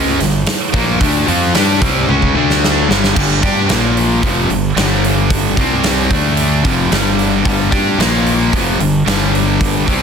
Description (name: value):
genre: hard rock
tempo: 112 BPM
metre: 4/4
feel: straight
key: unclear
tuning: A4 = 441 Hz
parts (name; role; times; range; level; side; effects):
- crunchy overdriven guitar; riff; 0.0-10.0 s; F2 to G4; -16 LUFS; left 11 dB; none
- high-gain distorted guitar; riff; 0.0-10.0 s; F2 to G4; -17 LUFS; right 13 dB; distortion
- fuzz fingered electric bass; bass; 0.0-10.0 s; F1 to G2; -19 LUFS; equal; overdrive
- huge arena drum kit; drums; 0.2-10.0 s; crash cymbal, hi-hat, kick drum, snare drum, toms; -17 LUFS; right 1 dB; none
room: light reverb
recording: dense, heavily limited modern master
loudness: -11 LUFS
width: side -6 dB against mid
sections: 0.0-3.2 A section; 3.2-10.0 B section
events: drum fill 2.1-3.2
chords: 0.0 G5; 2.3 D5; 2.9 G5; 3.7 Bb5; 4.2 G5; 5.6 C5; 6.1 D5; 6.7 G5; 8.0 Bb5; 8.5 G5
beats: 0.47 | 1.00 1.54 2.08 2.62 | 3.15 3.69 4.23 4.77 | 5.31 5.84 6.38 6.92 | 7.46 8.00 8.53 9.07 | 9.61